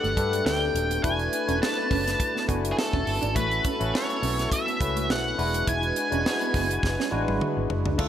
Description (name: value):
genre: polished 1980s jazz-funk pop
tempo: 104 BPM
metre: 4/4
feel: swing 54% on 16ths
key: unclear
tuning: A4 = 440 Hz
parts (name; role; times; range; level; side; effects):
- octave-fuzz lead guitar; melody; 0.0-7.4 s; G#4 to A5; -28 LUFS; equal; distortion
- clear horn section; second line; 0.0-7.7 s; D4 to D5; -37 LUFS; right 3 dB; none
- barky tine electric piano; accompaniment; 0.0-8.1 s; G#3 to G#5; -29 LUFS; left 2 dB; medium stereo tremolo, lush chorus
- electric guitar at the edge of break-up; riff; 0.0-8.1 s; G3 to E4; -35 LUFS; right 6 dB; wide subtle chorus
- vintage muted fingered electric bass; bass; 0.0-8.1 s; D#1 to G2; -30 LUFS; equal; none
- tight funk drum kit; drums; 0.0-8.1 s; crash cymbal, hi-hat, kick drum, snare drum, toms; -29 LUFS; equal; gated reverb
room: light reverb, small room ambience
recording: bright 1980s-style digital production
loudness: -23 LUFS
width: side -10 dB against mid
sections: 0.0-8.0 A section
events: drum fill 6.8-8.0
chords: 0.0 Gmaj9; 1.0 E7sus4; 3.4 A69; 5.4 E9